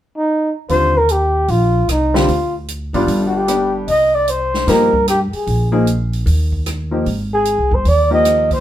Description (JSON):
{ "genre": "jazz, small-group swing and bop", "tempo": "151 BPM", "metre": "4/4", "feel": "swing 65% on 8ths", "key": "Eb major", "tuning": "A4 = 439 Hz", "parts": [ { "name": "breathy flugelhorn", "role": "melody", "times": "0.2-8.6 s", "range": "Eb4 to Eb5", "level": "-15 LUFS", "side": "equal", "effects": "none" }, { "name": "clear concert grand piano", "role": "accompaniment", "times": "0.7-8.6 s", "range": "D3 to Ab4", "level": "-18 LUFS", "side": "left 1 dB", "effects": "none" }, { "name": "upright bass", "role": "bass", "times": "0.7-8.6 s", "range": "G1 to G2", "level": "-18 LUFS", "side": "equal", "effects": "none" }, { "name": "open jazz drum kit", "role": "drums", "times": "0.7-8.6 s", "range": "hi-hat, kick drum, rim click, snare drum", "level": "-25 LUFS", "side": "right 1 dB", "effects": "none" } ], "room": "moderate studio reverb, RT60 0.8 s", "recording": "minimal, uncompressed stereo recording", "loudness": "-13 LUFS", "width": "side -12 dB against mid", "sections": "0.7-8.6 A section", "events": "none", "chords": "0.0 N.C.; 0.7 Eb6; 2.3 Ddim; 3.1 G7; 3.9 Cm7; 5.5 Bb5; 6.3 Eb; 7.1 Abmaj7(no3)" }